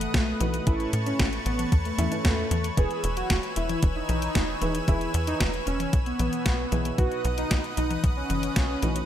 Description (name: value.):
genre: italo disco.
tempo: 114 BPM.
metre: 4/4.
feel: straight.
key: E major.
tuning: A4 = 440 Hz.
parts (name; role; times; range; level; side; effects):
wide unison lead; melody; 0.0-9.0 s; A3 to G#4; -30 LUFS; equal; tape echo.
lush unison pad; sustained chords; 0.0-9.1 s; B4 to E6; -34 LUFS; left 1 dB; chorus.
dark baby grand piano; stabs; 0.0-9.1 s; A2 to E5; -34 LUFS; right 4 dB; none.
tight sequencer bass; bass; 0.0-9.0 s; E1 to A2; -29 LUFS; equal; none.
clean 12-bit digital drum machine; drums; 0.0-9.1 s; hi-hat, snare drum, toms; -30 LUFS; left 3 dB; overdrive, gated reverb.
electronic kick drum; drums; 0.1-8.7 s; none; -23 LUFS; equal; overdrive.
room: digital ambience.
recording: none.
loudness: -23 LUFS.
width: side -10 dB against mid.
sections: 0.0-9.1 A section.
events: none.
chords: 0.0 B; 0.7 Aadd9; 2.8 E; 7.0 B.